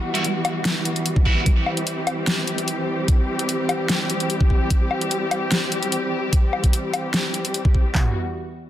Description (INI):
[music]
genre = heavy wobble dubstep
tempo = 148 BPM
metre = 4/4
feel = half-time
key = unclear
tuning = A4 = 438 Hz
[part]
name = muted studio string section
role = sustained chords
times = 0.0-8.1 s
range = E3 to G4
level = -24 LUFS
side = equal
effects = sidechain pumping
[part]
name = high-gain distorted guitar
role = stabs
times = 0.1-1.4 s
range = G3 to F#4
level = -27 LUFS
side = right 2 dB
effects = distortion, tape echo
[part]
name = dubstep drum kit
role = drums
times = 0.1-7.6 s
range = hi-hat, snare drum, woodblock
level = -24 LUFS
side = left 2 dB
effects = overdrive
[part]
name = dubstep drum kit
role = drums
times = 1.2-8.0 s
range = handclaps, kick drum, toms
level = -18 LUFS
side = equal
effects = overdrive
[sound]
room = light reverb, digital ambience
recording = dense, heavily limited modern master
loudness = -19 LUFS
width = side -12 dB against mid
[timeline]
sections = 0.0-7.9 A section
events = none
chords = 0.0 Emadd9; 1.5 C; 7.9 Emadd9